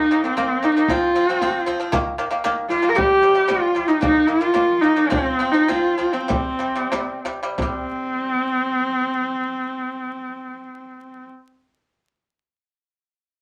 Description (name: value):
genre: mongolian traditional, Mongolian folk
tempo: 87-116 BPM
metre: 4/4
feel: straight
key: C yu mode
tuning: A4 = 439 Hz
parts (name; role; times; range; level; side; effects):
- rich horsehead fiddle; melody; 0.0-11.3 s; C4 to Bb4; -21 LUFS; equal; none
- pipa; arpeggios; 0.0-11.3 s; C3 to C4; -27 LUFS; equal; none
- frame drum; percussion; 0.4-7.9 s; none; -30 LUFS; equal; none
room: wet small room reverb, RT60 0.6 s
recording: vinyl crackle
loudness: -20 LUFS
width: mono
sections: 0.0-7.6 A section; 7.6-13.1 B section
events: slowing down 3.0-7.6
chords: 0.0 Eb5; 0.9 F5; 1.9 Eb5; 3.0 C5; 4.0 Eb5; 5.1 F5; 6.3 C5